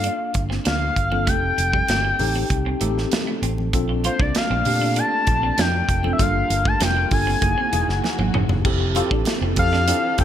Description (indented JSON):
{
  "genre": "polished 1980s jazz-funk pop",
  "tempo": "98 BPM",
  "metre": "4/4",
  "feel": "straight",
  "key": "F major",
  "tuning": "A4 = 440 Hz",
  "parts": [
    { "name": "expressive synth lead", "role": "melody", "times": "0.0-10.2 s", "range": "C5 to A5", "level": "-22 LUFS", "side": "left 2 dB", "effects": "chorus" },
    { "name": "tine electric piano", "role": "accompaniment", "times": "0.0-10.2 s", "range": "Bb3 to A4", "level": "-27 LUFS", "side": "left 2 dB", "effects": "overdrive, fast stereo tremolo, wide subtle chorus" },
    { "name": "semi-hollow electric guitar", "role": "riff", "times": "0.0-10.2 s", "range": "G3 to F4", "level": "-30 LUFS", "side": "right 4 dB", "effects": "wide subtle chorus" },
    { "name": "fingered electric bass with an envelope filter", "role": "bass", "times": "0.0-10.2 s", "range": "Fb1 to Bb2", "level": "-24 LUFS", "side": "right 1 dB", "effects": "none" },
    { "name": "modern studio drum kit", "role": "drums", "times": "0.0-10.2 s", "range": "crash cymbal, hi-hat, kick drum, snare drum, toms", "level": "-24 LUFS", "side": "right 1 dB", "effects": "gated reverb" },
    { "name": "congas", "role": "percussion", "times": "0.4-10.2 s", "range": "none", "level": "-36 LUFS", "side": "right 2 dB", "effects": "none" },
    { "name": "warm studio string section", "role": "sustained chords", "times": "3.7-10.2 s", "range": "Fb3 to A4", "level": "-33 LUFS", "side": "right 1 dB", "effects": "none" }
  ],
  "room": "light reverb, studio reverb",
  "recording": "bright 1980s-style digital production",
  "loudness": "-18 LUFS",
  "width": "side -10 dB against mid",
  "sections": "0.0-8.7 A section; 8.7-10.2 B section",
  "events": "drum fill 8.0-8.7",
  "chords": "0.0 Gm9; 1.3 F9; 3.7 Bbmaj9; 7.4 Gb13; 8.7 Fmaj9"
}